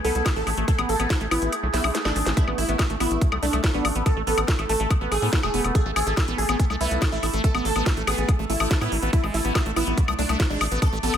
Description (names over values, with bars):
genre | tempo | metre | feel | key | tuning
psychedelic trance | 142 BPM | 4/4 | straight | unclear | A4 = 440 Hz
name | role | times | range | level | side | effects
supersaw stab | melody | 0.0-11.2 s | D4 to A4 | -28 LUFS | right 1 dB | phaser, sidechain pumping, dub echo
overtone-sweeping drone | sustained chords | 0.0-11.2 s | A3 to D5 | -31 LUFS | right 2 dB | chorus, built-in reverb, sidechain pumping
liquid acid bass | riff | 0.0-11.2 s | G#3 to E4 | -30 LUFS | moving between left 3 dB and right 3 dB | phaser, auto-pan, sidechain pumping, dub echo
tight sequencer bass | bass | 0.0-11.2 s | E1 to A2 | -27 LUFS | equal | none
garage drum kit | drums | 0.0-11.2 s | hi-hat, snare drum, woodblock | -27 LUFS | left 2 dB | none
electronic kick drum | drums | 0.3-10.9 s | none | -22 LUFS | equal | none
room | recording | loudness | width
light reverb | none | -20 LUFS | side -9 dB against mid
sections
0.0-2.4 A section; 2.4-11.2 B section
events
kick drops out 1.5-2.4; drum fill 1.7-2.4; drop 2.4-11.2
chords
0.0 A5